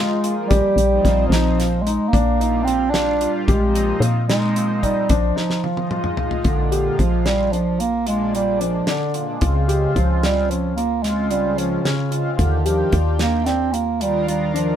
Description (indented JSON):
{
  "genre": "progressive instrumental, band music in an uneven meter",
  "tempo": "222 BPM (eighths)",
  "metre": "11/8",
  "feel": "straight",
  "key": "Bb mixolydian",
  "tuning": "A4 = 440 Hz",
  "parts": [
    { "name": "mellow bass clarinet", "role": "melody", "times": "0.0-14.8 s", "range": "Db3 to D4", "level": "-20 LUFS", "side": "right 3 dB", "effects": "none" },
    { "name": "analog string pad", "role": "accompaniment", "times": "0.0-14.8 s", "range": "Bb2 to Bb4", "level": "-26 LUFS", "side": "left 1 dB", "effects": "ensemble chorus" },
    { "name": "dark baby grand piano", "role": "arpeggios", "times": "0.0-14.8 s", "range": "Db4 to G4", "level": "-26 LUFS", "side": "left 4 dB", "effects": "none" },
    { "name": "damped 70s drum kit", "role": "drums", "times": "0.2-14.7 s", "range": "hi-hat, kick drum, snare drum, toms", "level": "-24 LUFS", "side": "equal", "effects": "none" },
    { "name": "woody FM bass", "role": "bass", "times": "0.5-14.8 s", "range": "Bb1 to Bb2", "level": "-22 LUFS", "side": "equal", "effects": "none" }
  ],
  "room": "light reverb",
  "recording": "band playing live in one room",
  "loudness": "-17 LUFS",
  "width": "side -10 dB against mid",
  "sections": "0.0-6.4 A section; 6.4-14.8 B section",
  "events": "drum fill 5.4-6.4",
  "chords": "0.0 Fm7; 0.5 Bbsus4; 2.1 Gm7/Bb; 3.5 Ab6/Bb; 5.1 Fm7/Bb; 6.4 Bb7; 9.4 Dbmaj7; 12.4 Ebmaj9"
}